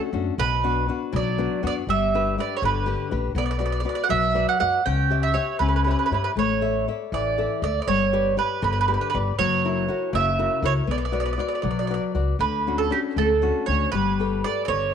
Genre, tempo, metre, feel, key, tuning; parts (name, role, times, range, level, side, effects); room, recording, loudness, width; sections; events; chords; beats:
italian folk, Italian serenade; 80 BPM (dotted quarters); 6/8; straight; B minor; A4 = 436 Hz
nylon-string guitar; accompaniment; 0.0-14.9 s; B2 to E5; -26 LUFS; left 9 dB
upright bass; bass; 0.1-14.9 s; F#1 to G2; -26 LUFS; left 1 dB
mandolin; melody; 0.4-14.9 s; G4 to G5; -24 LUFS; right 7 dB
moderate echo chamber reverb, RT60 1.8 s, small room ambience; 1960s-style stereo with parts hard left and right; -21 LUFS; side -8 dB against mid
0.4-12.4 A section; 12.4-14.9 B section
0.4 Bm; 1.9 G; 3.4 Bm; 4.9 C#dim; 6.4 Asus4; 7.9 G; 9.4 F#7; 10.9 Bm; 12.4 Dmaj7; 13.9 Gadd9
| 0.38 1.14 | 1.89 2.63 | 3.37 4.11 | 4.86 5.61 | 6.37 7.13 | 7.89 8.64 | 9.39 10.14 | 10.89 11.65 | 12.41 13.17 | 13.93 14.69